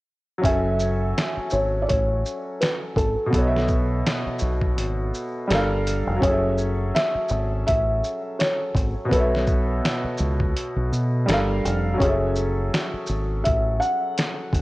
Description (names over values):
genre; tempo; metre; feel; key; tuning
lo-fi hip hop; 83 BPM; 4/4; swing 56% on 16ths; F# minor; A4 = 438 Hz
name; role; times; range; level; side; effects
felt-muted upright piano; melody; 0.4-14.6 s; A4 to F#5; -25 LUFS; equal; low-pass filter
clear upright piano; accompaniment; 0.4-14.6 s; B2 to G#5; -26 LUFS; equal; low-pass filter, cassette tape
deep dub fingered electric bass; bass; 0.4-14.6 s; F1 to B2; -24 LUFS; equal; none
dusty soul sampler-style drum kit; drums; 0.4-14.6 s; finger snaps, hi-hat, kick drum, shaker, snare drum; -25 LUFS; equal; vintage 12-bit sampler grit
room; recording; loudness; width
light reverb, digital ambience; home recording on cassette; -20 LUFS; side -19 dB against mid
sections
0.4-14.6 A section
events
none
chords
0.4 F#m9; 3.3 B9sus4; 5.5 Gm9; 6.2 F#m9; 9.1 B9sus4; 11.3 Gm9; 12.0 F#m9